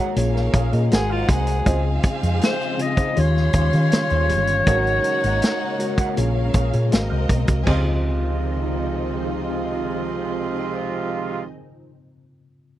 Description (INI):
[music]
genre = lush 1970s-style soul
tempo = 80 BPM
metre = 4/4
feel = straight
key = Db major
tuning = A4 = 440 Hz
[part]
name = warm symphonic violin section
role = second line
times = 0.0-11.4 s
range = C4 to C6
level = -31 LUFS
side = right 2 dB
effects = slapback echo
[part]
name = mellow tine electric piano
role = accompaniment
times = 0.0-12.8 s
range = Db3 to Gb5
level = -28 LUFS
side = left 4 dB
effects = medium stereo tremolo
[part]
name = soft string machine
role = sustained chords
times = 0.0-11.4 s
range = C3 to F5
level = -31 LUFS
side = equal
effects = phaser, ensemble chorus
[part]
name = electric guitar through a small old amp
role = riff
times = 0.0-11.6 s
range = Db4 to Gb5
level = -33 LUFS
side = right 6 dB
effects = wah
[part]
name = hollow-body short-scale fingered electric bass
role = bass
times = 0.2-11.5 s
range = G1 to Eb3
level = -22 LUFS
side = equal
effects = none
[part]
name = vintage drum kit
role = drums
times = 0.2-7.8 s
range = crash cymbal, hi-hat, kick drum, snare drum, toms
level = -20 LUFS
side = equal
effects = none
[part]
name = breathy alto saxophone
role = melody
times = 0.9-6.9 s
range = F4 to Eb5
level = -24 LUFS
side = left 1 dB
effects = none
[part]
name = mellow horn section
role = stabs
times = 4.7-11.4 s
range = C3 to Gb4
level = -26 LUFS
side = right 4 dB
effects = none
[sound]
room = little or no reverb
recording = dry, close 1970s-style studio recording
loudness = -18 LUFS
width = side -13 dB against mid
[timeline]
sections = 0.0-7.7 A section; 7.7-10.7 B section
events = band accent 4.7-7.7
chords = 0.2 Bbm7; 0.9 Ab13; 1.7 Dbmaj9; 3.2 Eb13; 4.7 Ab9sus4; 6.2 Bbm7; 6.9 Ab13; 7.7 Dbmaj9